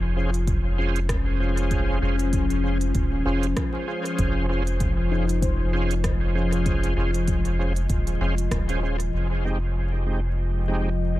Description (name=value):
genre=ambient dub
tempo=97 BPM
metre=4/4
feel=swing 57% on 16ths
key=unclear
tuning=A4 = 439 Hz
part: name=warbly tape-like pad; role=sustained chords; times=0.0-11.2 s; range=F3 to G5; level=-29 LUFS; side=left 2 dB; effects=chorus, built-in reverb
part: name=soft dub sub bass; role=bass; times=0.0-11.2 s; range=Eb1 to F1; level=-24 LUFS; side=equal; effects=none
part: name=overdriven tonewheel organ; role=stabs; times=0.2-10.9 s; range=Ab3 to C5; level=-30 LUFS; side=right 2 dB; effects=chorus vibrato, slow rotary speaker, dub echo
part: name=organic electronic drum kit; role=drums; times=0.3-9.1 s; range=hi-hat, rim click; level=-38 LUFS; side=right 1 dB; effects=dub echo
part: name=electronic kick drum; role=drums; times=0.5-8.7 s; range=none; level=-27 LUFS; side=equal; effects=none
part: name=handpan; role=arpeggios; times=5.1-6.7 s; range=Eb4 to C5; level=-38 LUFS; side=left 8 dB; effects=low-pass filter, dub echo
room=little or no reverb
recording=echo-heavy mix, vinyl crackle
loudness=-21 LUFS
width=side -16 dB against mid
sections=0.0-9.1 A section; 9.1-11.2 B section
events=none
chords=0.0 Eb13sus4; 9.1 Fm7